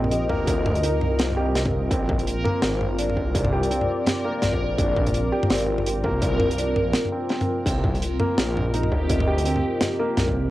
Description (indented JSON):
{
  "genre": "half-time drum and bass",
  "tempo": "167 BPM",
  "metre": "4/4",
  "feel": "swing 58% on 16ths, half-time",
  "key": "unclear",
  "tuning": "A4 = 439 Hz",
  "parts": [
    { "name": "dark analog pad", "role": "sustained chords", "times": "0.0-10.5 s", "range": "C4 to Eb5", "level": "-27 LUFS", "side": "equal", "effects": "chorus, sidechain pumping, cassette tape" },
    { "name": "felt-muted upright piano", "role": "arpeggios", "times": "0.0-10.5 s", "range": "Bb3 to G4", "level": "-28 LUFS", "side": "equal", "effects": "cassette tape, tape echo" },
    { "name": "dark detuned saw bass", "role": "bass", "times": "0.0-10.5 s", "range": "Ab1 to D2", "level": "-26 LUFS", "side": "equal", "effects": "none" },
    { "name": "tight funk drum kit", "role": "drums", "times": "0.0-10.3 s", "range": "crash cymbal, hi-hat, snare drum, toms", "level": "-26 LUFS", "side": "equal", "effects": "none" },
    { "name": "backwards swelling texture", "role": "texture", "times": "0.0-10.5 s", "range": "G4 to Bb4", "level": "-32 LUFS", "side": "right 1 dB", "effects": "built-in reverb, cassette tape" },
    { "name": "electronic kick drum", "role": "drums", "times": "0.3-10.3 s", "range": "none", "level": "-26 LUFS", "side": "equal", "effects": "distortion" }
  ],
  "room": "light reverb",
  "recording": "home recording on cassette",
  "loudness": "-20 LUFS",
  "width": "side -15 dB against mid",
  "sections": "0.0-10.5 A section",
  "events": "break 6.9-7.7",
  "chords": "0.0 Cm; 1.9 Bb; 7.7 Cm"
}